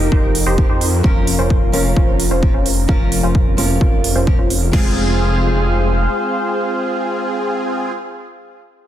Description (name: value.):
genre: EDM, festival progressive house.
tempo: 130 BPM.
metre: 4/4.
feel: straight.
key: F minor.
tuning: A4 = 437 Hz.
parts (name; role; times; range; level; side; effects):
fingerpicked steel-string acoustic guitar; accompaniment; 0.0-7.9 s; F3 to Bb4; -22 LUFS; equal; sidechain pumping, digital delay.
lush unison pad; sustained chords; 0.0-7.9 s; Db4 to Bb5; -25 LUFS; equal; chorus, sidechain pumping.
supersaw stab; riff; 0.0-7.9 s; C4 to C5; -22 LUFS; equal; phaser, cassette tape, sidechain pumping, low-pass filter, digital delay.
wide detuned saw bass; bass; 0.0-6.1 s; F1 to F2; -18 LUFS; equal; chorus, sidechain pumping.
electronic kick drum; drums; 0.1-4.8 s; none; -15 LUFS; equal; none.
big-room dance drum kit; drums; 0.3-4.8 s; crash cymbal, hi-hat; -23 LUFS; right 4 dB; overdrive.
room: light reverb.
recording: dense, heavily limited modern master.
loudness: -14 LUFS.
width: side -11 dB against mid.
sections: 0.0-4.7 A section; 4.7-8.4 B section.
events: filter sweep on supersaw synth 0.0-4.7.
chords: 0.0 Eb/F; 1.0 Bbm/F; 4.7 Fm.